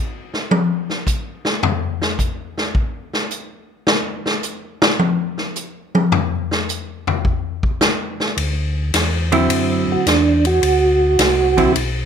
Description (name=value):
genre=soul jazz organ trio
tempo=107 BPM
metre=4/4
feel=swing 68% on 8ths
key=unclear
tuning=A4 = 440 Hz
part: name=swinging big-band drum kit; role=drums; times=0.3-11.9 s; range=hi-hat, kick drum, ride cymbal, snare drum, toms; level=-18 LUFS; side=left 2 dB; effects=none
part: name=mellow tonewheel organ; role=bass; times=8.4-12.1 s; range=B1 to F#2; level=-20 LUFS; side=equal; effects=slow rotary speaker
part: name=vintage hollow-body jazz guitar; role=accompaniment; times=9.3-11.7 s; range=D3 to E4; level=-16 LUFS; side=right 2 dB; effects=none
part: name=percussive tonewheel organ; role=melody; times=9.9-11.7 s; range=D4 to F#4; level=-15 LUFS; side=right 3 dB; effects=slow rotary speaker, chorus vibrato, plate reverb
room=moderate studio reverb, RT60 0.6 s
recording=none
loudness=-16 LUFS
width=side -7 dB against mid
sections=0.0-12.1 A section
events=tonewheel organ solo 0.0-12.1; drum solo 0.0-8.4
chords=0.0 N.C.; 8.4 D9